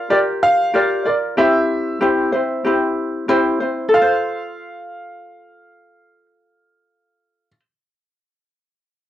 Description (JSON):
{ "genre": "pop", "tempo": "94 BPM", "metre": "4/4", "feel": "swing 55% on 16ths", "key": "F major", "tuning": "A4 = 440 Hz", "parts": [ { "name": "clear upright piano", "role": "melody", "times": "0.0-7.5 s", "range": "D5 to F5", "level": "-19 LUFS", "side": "equal", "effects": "cassette tape" }, { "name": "ukulele", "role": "accompaniment", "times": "0.0-7.6 s", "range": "C4 to D5", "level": "-17 LUFS", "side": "left 1 dB", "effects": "cassette tape" } ], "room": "light reverb", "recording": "home recording on cassette", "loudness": "-15 LUFS", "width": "side -12 dB against mid", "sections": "0.0-3.9 A section; 3.9-6.5 B section", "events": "none", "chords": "0.0 Gm7; 1.4 C; 3.9 F" }